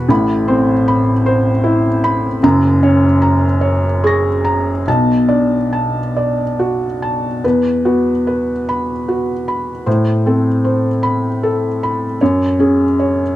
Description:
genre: neoclassical minimalist piano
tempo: 46-52 BPM (dotted quarters)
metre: 6/8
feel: rubato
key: E mixolydian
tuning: A4 = 439 Hz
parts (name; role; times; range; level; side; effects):
- felt-muted upright piano; solo; 0.0-13.4 s; F#1 to A#6; -13 LUFS; equal; none
room: little or no reverb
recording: dry, close 1970s-style studio recording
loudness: -13 LUFS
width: side -14 dB against mid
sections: 0.0-7.4 A section; 7.4-13.4 B section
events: none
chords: 0.1 Amadd9; 2.4 F#add9; 4.9 Bm7; 7.4 Esus2; 9.9 Amadd9; 12.2 F#sus2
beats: | 0.10 1.26 | 2.43 3.61 | 4.87 6.16 | 7.44 8.68 | 9.86 11.03 | 12.20

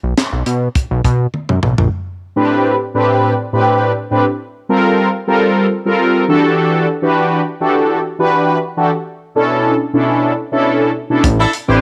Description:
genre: early-eighties boogie funk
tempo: 103 BPM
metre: 4/4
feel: straight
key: A minor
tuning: A4 = 440 Hz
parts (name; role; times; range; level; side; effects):
- fat analog bass; bass; 0.0-1.9, 11.2-11.8 s; A1 to B2; -17 LUFS; equal; transformer saturation
- tight funk drum kit; drums; 0.2-1.9, 11.2-11.7 s; handclaps, hi-hat, kick drum, snare drum, toms; -19 LUFS; equal; none
- mellow synth brass; accompaniment; 2.4-11.8 s; A2 to B4; -15 LUFS; equal; chorus, phaser
- clear horn section; second line; 11.4-11.8 s; D4 to C5; -17 LUFS; equal; none
room: light reverb, studio ambience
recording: none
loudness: -15 LUFS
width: mono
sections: 0.0-1.9 A section; 1.9-11.8 B section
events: drum fill 1.3-1.9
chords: 0.0 B5; 1.9 Am11; 4.2 Gm11; 6.3 Em11; 8.9 Bm11; 11.2 Am11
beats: 0.17 0.75 1.34 | 1.92 2.50 3.08 3.67 | 4.25 4.83 5.42 6.00 | 6.58 7.16 7.75 8.33 | 8.91 9.49 10.07 10.66 | 11.24

